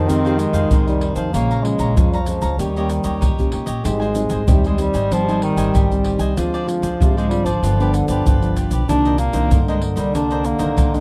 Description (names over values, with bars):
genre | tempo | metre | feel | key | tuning
samba and choro | 95 BPM | 4/4 | straight | C minor | A4 = 440 Hz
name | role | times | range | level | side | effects
clear bass clarinet | melody | 0.0-11.0 s | C3 to D4 | -24 LUFS | equal | none
warm trombone | second line | 0.0-11.0 s | Bb2 to Ab3 | -26 LUFS | equal | none
cavaquinho | accompaniment | 0.0-11.0 s | Eb4 to Bb5 | -32 LUFS | equal | none
nylon-string guitar | accompaniment | 0.0-11.0 s | F2 to G4 | -27 LUFS | equal | none
upright bass | bass | 0.0-11.0 s | G1 to Ab2 | -25 LUFS | equal | none
tube shaker, surdo and pandeiro | percussion | 0.1-11.0 s | none | -22 LUFS | equal | none
room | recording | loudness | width
studio ambience | dry, close 1970s-style studio recording | -18 LUFS | mono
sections
0.0-11.0 A section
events
none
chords
0.0 Fm9; 1.3 Bbm7; 2.6 Eb7; 3.9 Abmaj7; 6.4 Dm7b5; 7.6 G7; 8.9 Cm9